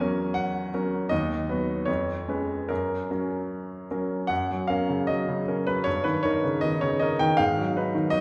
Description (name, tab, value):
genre	classical, romantic character piece for solo piano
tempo	77 BPM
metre	2/4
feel	uneven beats, rubato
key	F# major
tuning	A4 = 441 Hz
part	bright baby grand piano	solo	0.0-8.2 s	D#2 to G#5	-26 LUFS	equal	none
room	wet recital hall reverb, RT60 1.5 s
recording	heard from further back in the room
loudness	-27 LUFS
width	mono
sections	0.0-4.3 A section; 4.3-8.2 A section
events	none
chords	0.0 F#7/E; 1.1 B/D#; 1.9 C#7/E#; 2.7 F#; 5.9 D#7/G; 7.4 G#m7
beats	0.36 | 1.10 1.88 | 2.70 3.50 | 4.30 5.08 | 5.86 6.62 | 7.38 8.12